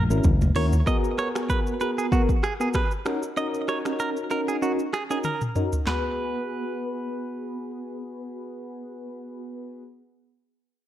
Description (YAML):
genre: afrobeats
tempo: 96 BPM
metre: 4/4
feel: swing 55% on 16ths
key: G# minor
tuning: A4 = 438 Hz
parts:
  - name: direct-recorded clean electric guitar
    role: riff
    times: 0.0-7.7 s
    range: F#4 to D#5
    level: -30 LUFS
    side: right 4 dB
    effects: digital delay
  - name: fingered electric bass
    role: bass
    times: 0.0-0.8 s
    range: F#1 to D#2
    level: -23 LUFS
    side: equal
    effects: none
  - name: soft electric-piano-like synth keys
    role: accompaniment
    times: 0.1-9.8 s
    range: B3 to B4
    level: -28 LUFS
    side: left 1 dB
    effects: chorus, phaser
  - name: afro-pop drum kit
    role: drums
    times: 0.1-6.0 s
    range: finger snaps, handclaps, hi-hat, kick drum, rim click, shaker, snare drum, toms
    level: -25 LUFS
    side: equal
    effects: none
  - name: congas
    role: percussion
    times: 0.2-0.5 s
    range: none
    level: -31 LUFS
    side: left 5 dB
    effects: none
room: light reverb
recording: dark, warm production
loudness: -23 LUFS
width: side -12 dB against mid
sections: 0.9-5.9 A section; 5.9-8.4 B section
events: drum fill 0.0-0.9, 5.2-5.9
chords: 0.0 F#7; 0.9 G#m9; 3.1 D#m7; 5.9 G#m7